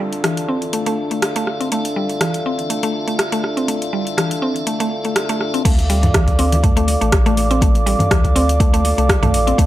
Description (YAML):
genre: afro house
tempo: 122 BPM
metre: 4/4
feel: swing 54% on 16ths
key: unclear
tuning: A4 = 440 Hz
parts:
  - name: dark analog pad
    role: sustained chords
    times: 0.0-9.7 s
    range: D4 to D6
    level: -23 LUFS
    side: right 1 dB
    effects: chorus, sidechain pumping
  - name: mallet-like synth pluck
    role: arpeggios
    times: 0.0-9.7 s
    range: E3 to C4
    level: -22 LUFS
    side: equal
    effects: chorus, sidechain pumping, tape echo
  - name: tonewheel organ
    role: stabs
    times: 0.0-5.6 s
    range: D4 to A4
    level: -24 LUFS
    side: left 2 dB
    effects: slow rotary speaker, sidechain pumping, low-pass filter, tape echo
  - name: downlifter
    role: sound effects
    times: 0.0-1.7 s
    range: none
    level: -43 LUFS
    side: equal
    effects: none
  - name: afro-pop drum kit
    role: drums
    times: 0.1-9.7 s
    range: crash cymbal, hi-hat, rim click, toms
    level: -22 LUFS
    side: equal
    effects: none
  - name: warm sub bass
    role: bass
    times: 5.7-9.7 s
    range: A1 to D2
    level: -18 LUFS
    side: equal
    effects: sidechain pumping
  - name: electronic kick drum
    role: drums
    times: 5.7-9.7 s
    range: none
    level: -16 LUFS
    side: equal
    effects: none
  - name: congas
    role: percussion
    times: 5.7-9.7 s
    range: none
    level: -25 LUFS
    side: left 2 dB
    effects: none
room: little or no reverb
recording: dry, gritty hardware recording, transformer saturation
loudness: -15 LUFS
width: side -14 dB against mid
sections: 0.0-5.7 A section; 5.7-9.7 B section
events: filter sweep on tonewheel organ 0.0-5.7; drop 5.7-9.7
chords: 0.0 Dm